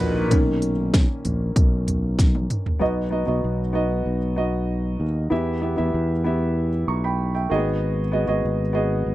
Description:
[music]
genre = piano-driven pop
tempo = 96 BPM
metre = 4/4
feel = straight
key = B major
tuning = A4 = 438 Hz
[part]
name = warm concert grand piano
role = accompaniment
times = 0.0-9.1 s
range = G#2 to C#6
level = -24 LUFS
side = right 1 dB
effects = none
[part]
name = fingered electric bass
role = bass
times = 0.0-9.1 s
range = G#1 to E2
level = -24 LUFS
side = equal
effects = none
[part]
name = house drum kit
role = drums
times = 0.0-2.8 s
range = hi-hat, kick drum, ride cymbal, snare drum, toms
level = -20 LUFS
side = equal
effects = none
[sound]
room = little or no reverb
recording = dry, close 1970s-style studio recording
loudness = -20 LUFS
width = side -15 dB against mid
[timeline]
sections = 0.3-2.8 A section; 2.8-9.1 B section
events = grand piano solo 0.3-2.8; drum fill 2.2-2.8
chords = 0.3 Bmaj7; 2.8 B; 5.3 Em; 7.5 G#m7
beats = | 0.31 0.94 1.56 2.18 | 2.81 3.43 4.06 4.68 | 5.31 5.93 6.56 7.18 | 7.81 8.43 9.06

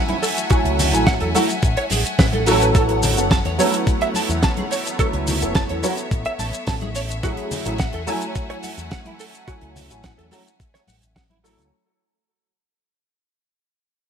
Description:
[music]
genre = nu-disco, nu disco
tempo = 107 BPM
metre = 4/4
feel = straight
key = unclear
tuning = A4 = 441 Hz
[part]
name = dark baby grand piano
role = accompaniment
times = 0.0-11.7 s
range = F#3 to G#5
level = -23 LUFS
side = right 1 dB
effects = ensemble chorus, sidechain pumping, digital delay
[part]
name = clear studio string section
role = sustained chords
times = 0.0-11.7 s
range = A3 to G#5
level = -29 LUFS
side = left 2 dB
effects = sidechain pumping
[part]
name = direct-recorded clean electric guitar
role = riff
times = 0.1-11.5 s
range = E4 to A5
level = -26 LUFS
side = right 3 dB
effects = ensemble chorus, digital delay
[part]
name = damped 70s drum kit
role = drums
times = 0.1-11.7 s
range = hi-hat, shaker, snare drum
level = -24 LUFS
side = right 1 dB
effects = studio reverb
[part]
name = congas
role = percussion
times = 0.1-11.4 s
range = none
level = -30 LUFS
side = left 3 dB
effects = none
[part]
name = picked electric bass with an envelope filter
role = bass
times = 0.5-11.7 s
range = F#1 to E2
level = -24 LUFS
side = equal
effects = none
[part]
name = electronic kick drum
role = drums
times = 0.5-11.3 s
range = none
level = -21 LUFS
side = equal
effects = studio reverb
[sound]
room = light reverb, small room ambience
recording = bright 1980s-style digital production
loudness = -17 LUFS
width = side -7 dB against mid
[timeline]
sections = 0.0-11.7 A section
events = drop 0.0-11.7; fade-out 2.8-11.7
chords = 0.0 F#m9; 2.8 A69; 7.2 F#m9/A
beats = | 0.51 1.07 1.63 2.19 | 2.75 3.31 3.87 4.43 | 4.99 5.55 6.12 6.68 | 7.24 7.80 8.36 8.92 | 9.48 10.04 10.60 11.16

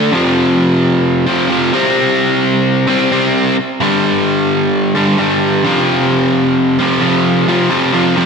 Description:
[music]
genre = rock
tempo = 130 BPM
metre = 4/4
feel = straight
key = unclear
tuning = A4 = 442 Hz
[part]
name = biting overdriven guitar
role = solo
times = 0.0-8.3 s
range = F2 to D4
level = -11 LUFS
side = equal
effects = tape echo
[sound]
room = wet lush hall reverb, RT60 2.1 s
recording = big arena sound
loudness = -11 LUFS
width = side -5 dB against mid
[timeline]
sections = 0.0-7.5 A section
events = none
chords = 0.1 F5; 1.7 C5; 3.8 G5; 5.6 F5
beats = | 0.12 0.58 1.04 1.50 | 1.96 2.42 2.88 3.34 | 3.80 4.26 4.72 5.19 | 5.65 6.11 6.56 7.02 | 7.48 7.94

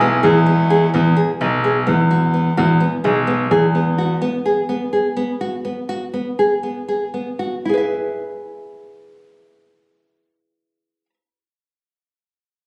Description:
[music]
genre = contemporary instrumental, chamber music in an uneven meter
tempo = 231-257 BPM (eighths)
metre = 7/8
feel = straight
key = E major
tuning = A4 = 440 Hz
[part]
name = pedal harmonium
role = sustained chords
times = 0.0-0.9 s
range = G#3 to F#4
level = -29 LUFS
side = equal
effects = none
[part]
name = nylon-string guitar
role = arpeggios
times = 0.0-11.1 s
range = B3 to E5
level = -22 LUFS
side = equal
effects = none
[part]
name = bright concert grand piano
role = bass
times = 0.0-4.1 s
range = B1 to E2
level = -18 LUFS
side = equal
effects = none
[sound]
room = moderate recital hall reverb, RT60 1.5 s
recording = recorded on a phone in the room, club reverb, compression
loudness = -18 LUFS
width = mono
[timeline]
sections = 0.9-7.6 A section; 7.6-11.3 B section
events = slowing down 4.2-7.6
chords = 0.0 Eadd9; 7.6 E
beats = 0.00 0.24 0.47 0.70 | 0.94 1.17 1.40 1.64 1.87 2.11 2.34 | 2.58 2.81 3.04 3.28 3.52 3.75 3.98 | 4.22 4.46 4.69 4.93 5.17 5.41 5.65 | 5.89 6.13 6.38 6.63 6.88 7.13 7.38 | 7.64 7.90 8.16 8.42 8.68 8.94 9.20 | 9.46 9.72 9.98 10.24 10.50 10.76 11.02

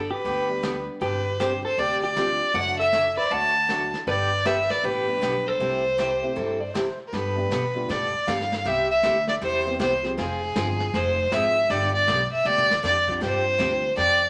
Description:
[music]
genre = country, western swing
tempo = 157 BPM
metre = 4/4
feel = swing 64% on 8ths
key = unclear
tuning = A4 = 440 Hz
[part]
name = clear fiddle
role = melody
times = 0.0-14.3 s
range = Ab4 to A5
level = -25 LUFS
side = equal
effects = none
[part]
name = hollow-body jazz guitar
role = second line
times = 0.0-6.8 s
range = D4 to F#5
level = -35 LUFS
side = equal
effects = none
[part]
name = upright bass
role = bass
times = 0.0-14.3 s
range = F1 to B2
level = -35 LUFS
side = equal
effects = none
[part]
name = picked swing-style acoustic guitar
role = accompaniment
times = 0.2-14.2 s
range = C3 to A4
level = -34 LUFS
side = equal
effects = none
[part]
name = vintage brush drum kit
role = drums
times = 0.3-14.3 s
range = brushed snare drum, crash cymbal, hi-hat, kick drum, snare drum, toms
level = -36 LUFS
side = equal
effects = none
[part]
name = warm upright piano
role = accompaniment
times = 0.5-13.8 s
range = F3 to Ab4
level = -36 LUFS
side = equal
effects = none
[part]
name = clean lap steel guitar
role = second line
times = 6.0-7.0 s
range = G4 to D5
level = -34 LUFS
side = equal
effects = none
[sound]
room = wet studio reverb, RT60 0.9 s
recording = none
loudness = -24 LUFS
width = mono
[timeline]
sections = 0.0-7.1 A section; 7.1-14.3 B section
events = drum fill 12.5-12.8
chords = 0.0 G; 1.0 Gsus4; 2.5 D/F#; 4.1 G; 5.6 C6; 7.1 Gadd9; 8.7 Cmaj7; 10.2 Fm; 11.7 G7; 13.2 G7sus4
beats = 0.25 0.63 | 1.01 1.40 1.78 2.16 | 2.54 2.92 3.31 3.69 | 4.07 4.45 4.83 5.22 | 5.60 5.98 6.36 6.75 | 7.13 7.51 7.89 8.27 | 8.65 9.04 9.42 9.80 | 10.18 10.56 10.94 11.32 | 11.70 12.08 12.46 12.84 | 13.21 13.59 13.97

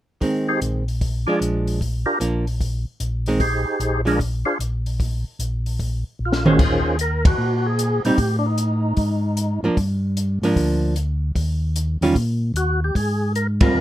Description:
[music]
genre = soul jazz organ trio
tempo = 151 BPM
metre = 4/4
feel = swing 66% on 8ths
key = Eb major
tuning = A4 = 440 Hz
[part]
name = archtop guitar, miked and amplified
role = accompaniment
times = 0.2-13.8 s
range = Eb3 to C5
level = -20 LUFS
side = right 2 dB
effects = none
[part]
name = compact cocktail drum kit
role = drums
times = 0.2-13.7 s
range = crash cymbal, hi-hat, kick drum, ride cymbal, snare drum, toms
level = -22 LUFS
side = equal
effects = none
[part]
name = percussive tonewheel organ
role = melody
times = 0.5-9.6, 12.6-13.8 s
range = Eb3 to D5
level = -23 LUFS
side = equal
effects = slow rotary speaker, overdrive, chorus vibrato
[part]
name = mellow tonewheel organ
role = bass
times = 0.6-13.8 s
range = Bb1 to Bb2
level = -22 LUFS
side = equal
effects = overdrive, chorus vibrato, slow rotary speaker
[sound]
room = little or no reverb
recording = close, detailed microphones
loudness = -19 LUFS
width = side -13 dB against mid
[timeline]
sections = 0.2-6.6 A section; 6.6-13.8 B section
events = drum fill 6.2-6.6; band accent 7.2, 13.5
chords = 0.2 Bb13sus4; 1.0 Bb7; 1.8 Gm7; 2.6 Bb9sus4; 3.4 Fm7; 4.2 Bb7; 5.0 N.C.; 5.8 Bb5; 6.6 Eb13sus4; 8.2 Eb(#11)/A; 9.0 Absus2; 9.8 Gm7; 11.4 Eb5; 12.9 Abmaj13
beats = | 0.21 0.61 1.01 1.41 | 1.81 2.21 2.61 3.00 | 3.40 3.80 4.20 4.60 | 5.00 5.39 5.79 6.19 | 6.59 6.99 7.38 7.78 | 8.18 8.58 8.97 9.37 | 9.77 10.17 10.56 10.96 | 11.36 11.76 12.15 12.55 | 12.95 13.34 13.74

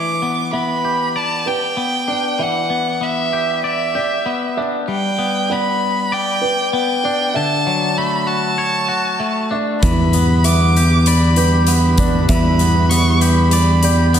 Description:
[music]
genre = post-rock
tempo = 97 BPM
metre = 4/4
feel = straight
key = E dorian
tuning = A4 = 440 Hz
[part]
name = warm violin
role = melody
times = 0.0-14.2 s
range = E5 to D6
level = -19 LUFS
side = right 2 dB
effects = slapback echo, analog delay
[part]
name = twangy electric guitar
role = arpeggios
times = 0.0-14.2 s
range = D3 to D5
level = -21 LUFS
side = left 3 dB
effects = spring reverb, slapback echo, analog delay
[part]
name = felt-muted upright piano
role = arpeggios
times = 0.5-14.2 s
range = B4 to E5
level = -26 LUFS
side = right 4 dB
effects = slapback echo, analog delay
[part]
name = warm studio string section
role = sustained chords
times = 9.8-14.2 s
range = D3 to E4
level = -25 LUFS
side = right 2 dB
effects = none
[part]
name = growling fingered electric bass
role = bass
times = 9.8-14.2 s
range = E2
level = -14 LUFS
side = equal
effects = overdrive
[part]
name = big rock drum kit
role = drums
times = 9.8-14.2 s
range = hi-hat, kick drum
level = -20 LUFS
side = equal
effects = none
[sound]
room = moderate lush hall reverb, RT60 2.3 s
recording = big arena sound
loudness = -14 LUFS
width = side -9 dB against mid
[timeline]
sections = 0.0-14.2 A section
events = none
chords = 0.0 Em7; 4.9 G; 7.4 Dmaj7; 9.8 Em7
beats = 0.55 1.17 1.78 | 2.40 3.02 3.64 4.26 | 4.88 5.50 6.12 6.74 | 7.36 7.97 8.59 9.21 | 9.83 10.44 11.06 11.68 | 12.29 12.91 13.53 14.14

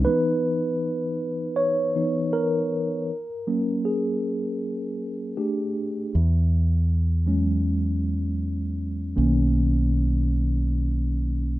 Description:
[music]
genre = R&B, neo-soul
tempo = 79 BPM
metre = 4/4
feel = swing 58% on 16ths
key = C# dorian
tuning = A4 = 440 Hz
[part]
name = mellow tine electric piano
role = accompaniment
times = 0.0-11.6 s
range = D#3 to C#5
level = -24 LUFS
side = equal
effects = medium stereo tremolo
[part]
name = deep dub fingered electric bass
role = bass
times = 0.0, 6.1-11.6 s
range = B1 to E2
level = -22 LUFS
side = equal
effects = none
[sound]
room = moderate small room reverb, RT60 0.5 s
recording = rough home demo mix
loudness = -22 LUFS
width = side -16 dB against mid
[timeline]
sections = 0.1-11.6 A section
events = tine electric piano solo 0.1-11.6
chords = 0.1 C#m9; 3.1 F#add9; 5.4 A7sus4; 6.1 E69; 9.2 Bmaj9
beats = | 0.06 0.82 1.58 2.33 | 3.10 3.85 4.61 5.37 | 6.13 6.89 7.65 8.41 | 9.17 9.93 10.69 11.45

